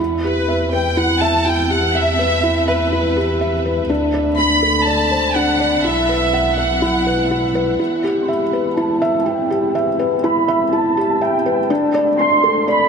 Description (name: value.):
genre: piano and strings electronica.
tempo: 123 BPM.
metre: 4/4.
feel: straight.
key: E minor.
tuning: A4 = 442 Hz.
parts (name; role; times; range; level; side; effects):
felt-muted upright piano; riff; 0.0-12.9 s; D4 to F#5; -17 LUFS; left 1 dB; shimmer reverb.
muted chamber double bass section; bass; 0.0-12.9 s; B1 to E2; -25 LUFS; equal; tube saturation, high-pass filter.
rich studio violin section; melody; 0.2-12.9 s; B4 to C6; -18 LUFS; right 1 dB; low-pass filter, shimmer reverb.
room: moderate huge ambient reverb, RT60 7.9 s.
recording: none.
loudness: -14 LUFS.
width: side -6 dB against mid.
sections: 0.0-7.8 A section; 7.8-12.9 B section.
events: build-up 7.8-12.9.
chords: 0.0 Em; 3.9 D7; 5.8 Bsus4; 7.8 Em; 11.7 D5.